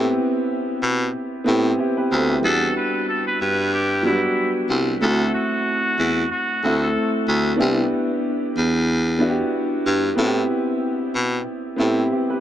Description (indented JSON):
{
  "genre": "hip hop, boom-bap hip-hop",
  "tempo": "93 BPM",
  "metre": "4/4",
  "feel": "swing 57% on 16ths",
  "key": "E minor",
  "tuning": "A4 = 439 Hz",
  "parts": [
    { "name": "warm upright piano", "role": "accompaniment", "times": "0.0-12.4 s", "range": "F#3 to C5", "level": "-21 LUFS", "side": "equal", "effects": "cassette tape, high-pass filter, low-pass filter" },
    { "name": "bright baritone saxophone", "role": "bass", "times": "0.0-12.0 s", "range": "C2 to B2", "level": "-21 LUFS", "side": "equal", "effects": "none" },
    { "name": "trumpet with straight mute", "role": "melody", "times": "2.4-7.1 s", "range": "E4 to B4", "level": "-24 LUFS", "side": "equal", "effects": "high-pass filter, low-pass filter, ping-pong delay" }
  ],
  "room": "moderate huge ambient reverb, RT60 5.6 s",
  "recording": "dreamy mix soaked in reverb, faint mains hum",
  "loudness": "-18 LUFS",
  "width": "side -11 dB against mid",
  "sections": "0.0-2.4 A section; 2.4-12.4 B section",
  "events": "none",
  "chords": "0.0 Am7; 2.4 Em7; 5.0 D7; 7.6 Cmaj7 (rootless); 10.2 Am7",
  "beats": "0.50 1.15 1.79 | 2.44 3.08 3.73 4.38 | 5.02 5.67 6.31 6.96 | 7.60 8.25 8.89 9.54 | 10.18 10.83 11.47 12.12"
}